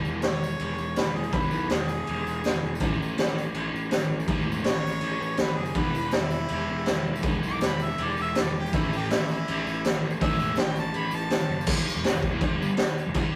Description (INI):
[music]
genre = garage rock duo or trio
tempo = 162 BPM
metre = 4/4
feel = straight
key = E mixolydian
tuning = A4 = 441 Hz
[part]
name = fuzz guitar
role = riff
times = 0.0-13.3 s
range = E2 to A3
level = -35 LUFS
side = equal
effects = distortion
[part]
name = tambourine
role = percussion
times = 0.0-13.2 s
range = none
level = -52 LUFS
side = equal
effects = none
[part]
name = fuzz picked electric bass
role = bass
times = 0.1-13.3 s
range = E1 to B1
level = -34 LUFS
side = equal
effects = overdrive
[part]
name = bright harmonica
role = melody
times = 0.2-11.7 s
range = E4 to D6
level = -34 LUFS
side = equal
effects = overdrive
[part]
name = raw garage drum kit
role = drums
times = 0.2-13.2 s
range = crash cymbal, kick drum, snare drum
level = -29 LUFS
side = equal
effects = none
[sound]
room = light reverb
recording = rough rehearsal-room recording, tube saturation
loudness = -27 LUFS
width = mono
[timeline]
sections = 0.0-11.7 A section; 11.7-13.4 B section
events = harmonica solo 0.0-11.7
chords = 0.0 E; 2.8 A; 5.8 E5; 8.7 A5; 11.7 Emadd11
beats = 0.23 0.60 0.97 | 1.34 1.71 2.08 2.45 | 2.82 3.19 3.56 3.93 | 4.30 4.67 5.04 5.41 | 5.78 6.15 6.52 6.89 | 7.26 7.63 8.00 8.37 | 8.73 9.10 9.47 9.84 | 10.21 10.58 10.95 11.32 | 11.69 12.06 12.42 12.79 | 13.16